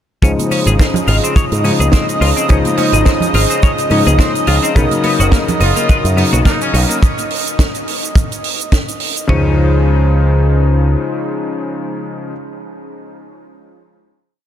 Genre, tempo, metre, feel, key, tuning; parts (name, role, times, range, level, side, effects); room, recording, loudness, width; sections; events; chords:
nu-disco, nu disco; 106 BPM; 4/4; swing 56% on 16ths; Db major; A4 = 440 Hz
warm electric grand piano; accompaniment; 0.2-12.3 s; Db3 to C5; -18 LUFS; left 3 dB; sidechain pumping, low-pass filter, tape echo
lush unison pad; sustained chords; 0.2-9.3 s; Eb5; -21 LUFS; right 1 dB; chorus, vintage 12-bit sampler grit, sidechain pumping
twelve-string electric guitar; riff; 0.2-9.6 s; Bb3 to Db5; -23 LUFS; left 3 dB; analog chorus, tape echo
picked electric bass with an envelope filter; bass; 0.2-10.9 s; Gb1 to Ab2; -13 LUFS; equal; tube saturation
compact cocktail drum kit; drums; 0.2-9.3 s; hi-hat, shaker, snare drum; -21 LUFS; right 4 dB
tight funk drum kit; drums; 0.2-9.4 s; kick drum, toms; -13 LUFS; equal
cabasa and congas; percussion; 0.2-7.0 s; -25 LUFS; right 3 dB
muted trumpet section; melody; 5.6-6.8 s; Db4 to F4; -26 LUFS; equal; tape echo
moderate huge ambient reverb, RT60 7.9 s; dreamy mix soaked in reverb; -11 LUFS; side -10 dB against mid
0.2-9.3 groove; 9.3-11.6 final chord
filter sweep on electric grand piano 0.2-7.0
0.2 Dbmaj7; 4.8 Cbmaj9 (rootless); 9.3 Dbmaj7